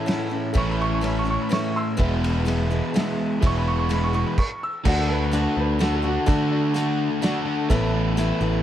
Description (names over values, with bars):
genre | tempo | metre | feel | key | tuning
folk rock and heartland rock | 126 BPM | 3/4 | straight | unclear | A4 = 441 Hz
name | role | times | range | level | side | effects
clear upright piano | second line | 0.0-6.5 s | F#4 to E6 | -29 LUFS | right 2 dB | plate reverb
picked steel-string acoustic guitar | accompaniment | 0.0-8.6 s | E2 to F#4 | -28 LUFS | left 4 dB | none
crunchy overdriven guitar | riff | 0.0-8.6 s | E2 to F#4 | -26 LUFS | equal | spring reverb
dark baby grand piano | accompaniment | 0.1-8.6 s | G#4 to A5 | -33 LUFS | right 3 dB | plate reverb
cloth-damped thuddy drum kit | drums | 0.1-8.3 s | crash cymbal, hi-hat, kick drum, ride cymbal, snare drum | -27 LUFS | equal | none
picked electric bass | bass | 0.6-8.6 s | E1 to D3 | -24 LUFS | equal | none
room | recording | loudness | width
light reverb | dark, warm production | -20 LUFS | side -11 dB against mid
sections
0.0-4.9 A section; 4.9-8.6 B section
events
upright piano solo 0.0-4.9; stop 4.4-4.9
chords
0.0 A; 2.0 E; 4.9 D; 7.7 Asus2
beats
0.08 | 0.56 1.03 1.51 | 1.99 2.47 2.95 | 3.42 3.90 4.38 | 4.86 5.33 5.81 | 6.28 6.76 7.23 | 7.71 8.18